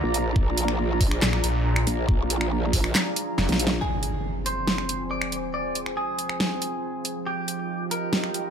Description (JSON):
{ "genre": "heavy wobble dubstep", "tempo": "139 BPM", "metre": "4/4", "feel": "half-time", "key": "F dorian", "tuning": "A4 = 440 Hz", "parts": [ { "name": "evolving wavetable pad", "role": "sustained chords", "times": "0.0-8.5 s", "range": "F3 to Bb4", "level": "-33 LUFS", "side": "right 3 dB", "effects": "chorus, built-in reverb, sidechain pumping" }, { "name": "growl bass", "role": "bass", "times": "0.0-3.8 s", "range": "Bb1", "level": "-25 LUFS", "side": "equal", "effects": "chorus, overdrive" }, { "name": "warbly tape-like pad", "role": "texture", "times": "0.0-8.5 s", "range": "F4 to Bb5", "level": "-32 LUFS", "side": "equal", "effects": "chorus, built-in reverb, sidechain pumping" }, { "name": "dubstep drum kit", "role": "drums", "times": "0.1-8.4 s", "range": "finger snaps, handclaps, hi-hat, snare drum", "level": "-25 LUFS", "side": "equal", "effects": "none" }, { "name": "electronic kick drum", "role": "drums", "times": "0.4-2.8 s", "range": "none", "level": "-22 LUFS", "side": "equal", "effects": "none" }, { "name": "snarling distorted saw bass", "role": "bass", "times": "1.2-3.5 s", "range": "F1 to Bb1", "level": "-23 LUFS", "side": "equal", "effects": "overdrive" }, { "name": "clean electric guitar", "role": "melody", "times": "3.8-8.5 s", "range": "G4 to D5", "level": "-30 LUFS", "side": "right 1 dB", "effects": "wide subtle chorus, ping-pong delay" }, { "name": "impact", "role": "sound effects", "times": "3.8-5.5 s", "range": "none", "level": "-32 LUFS", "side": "equal", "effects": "none" } ], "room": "light reverb, digital ambience", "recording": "none", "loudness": "-23 LUFS", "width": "side -7 dB against mid", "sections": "0.0-3.8 A section; 3.8-8.5 B section", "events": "drop 0.0-3.8; drum fill 3.4-3.8; impact 3.8-5.5; filter sweep on ambient pad 3.8-8.5", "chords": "0.0 Bb; 3.8 Fm; 7.3 Ebadd9" }